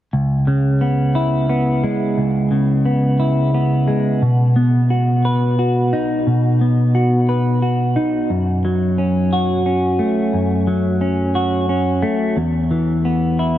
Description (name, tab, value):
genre	rock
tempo	59 BPM (dotted quarters)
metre	6/8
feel	straight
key	C# minor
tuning	A4 = 437 Hz
part	clean electric guitar	solo	0.1-13.6 s	C#2 to B4	-15 LUFS	equal	wide subtle chorus, tape echo
room	moderate huge ambient reverb, RT60 8.6 s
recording	none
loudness	-15 LUFS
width	side -12 dB against mid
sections	0.1-13.6 A section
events	none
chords	0.1 C#m7; 4.2 B; 8.3 F#m; 12.4 E5